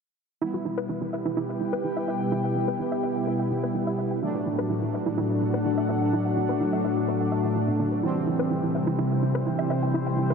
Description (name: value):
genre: techno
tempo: 126 BPM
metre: 4/4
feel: straight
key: E minor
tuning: A4 = 442 Hz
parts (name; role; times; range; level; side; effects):
- lush unison pad; sustained chords; 0.4-10.3 s; A2 to G4; -29 LUFS; left 2 dB; chorus
- soft round pluck; arpeggios; 0.4-10.3 s; B3 to G5; -31 LUFS; right 1 dB; chorus, ping-pong delay
- analog synth brass; stabs; 0.4-10.3 s; E3 to E4; -28 LUFS; right 2 dB; chorus, ping-pong delay
- warbly tape-like pad; texture; 1.2-10.3 s; D4 to G5; -30 LUFS; left 3 dB; chorus, built-in reverb, phaser
room: wet huge ambient reverb, RT60 8.0 s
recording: dreamy mix soaked in reverb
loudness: -24 LUFS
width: side -6 dB against mid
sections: 0.4-10.3 A section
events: none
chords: 0.4 Em; 4.2 D; 8.0 C